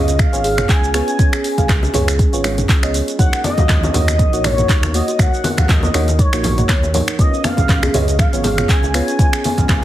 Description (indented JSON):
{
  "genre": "afro house",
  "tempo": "120 BPM",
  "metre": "4/4",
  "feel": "swing 55% on 16ths",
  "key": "unclear",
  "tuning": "A4 = 440 Hz",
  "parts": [
    { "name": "expressive portamento lead", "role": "melody", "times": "0.0-9.8 s", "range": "Db5 to Ab5", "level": "-22 LUFS", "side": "equal", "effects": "ensemble chorus, ping-pong delay" },
    { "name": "deep mellow chord stab", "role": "stabs", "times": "0.0-9.7 s", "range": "Bb3 to F5", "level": "-24 LUFS", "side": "right 2 dB", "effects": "chorus, sidechain pumping, ping-pong delay" },
    { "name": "round analog bass", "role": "bass", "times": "0.0-9.8 s", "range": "Ab1 to Eb2", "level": "-20 LUFS", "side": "equal", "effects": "sidechain pumping" },
    { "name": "kalimba", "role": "arpeggios", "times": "0.1-9.7 s", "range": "Ab3 to Db5", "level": "-24 LUFS", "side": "right 1 dB", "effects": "sidechain pumping, ping-pong delay" },
    { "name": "deep house drum kit", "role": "drums", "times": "0.1-9.8 s", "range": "finger snaps, handclaps, hi-hat, shaker, toms", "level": "-21 LUFS", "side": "equal", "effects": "none" },
    { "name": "electronic kick drum", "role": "drums", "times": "0.2-9.8 s", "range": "none", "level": "-15 LUFS", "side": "equal", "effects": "none" },
    { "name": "bongos", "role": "percussion", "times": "1.6-9.7 s", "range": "none", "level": "-28 LUFS", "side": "equal", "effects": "none" },
    { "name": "congas", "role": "percussion", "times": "3.2-9.8 s", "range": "none", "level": "-24 LUFS", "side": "left 1 dB", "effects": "none" }
  ],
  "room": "light reverb, digital ambience",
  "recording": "heavily compressed radio sound",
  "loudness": "-13 LUFS",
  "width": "side -13 dB against mid",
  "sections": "0.0-9.8 A section",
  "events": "none",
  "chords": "0.0 Db7; 3.2 Ebm7; 7.2 Db7",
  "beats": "0.19 0.69 | 1.19 1.69 2.19 2.69 | 3.19 3.69 4.19 4.69 | 5.19 5.69 6.19 6.69 | 7.19 7.69 8.19 8.69 | 9.19 9.69"
}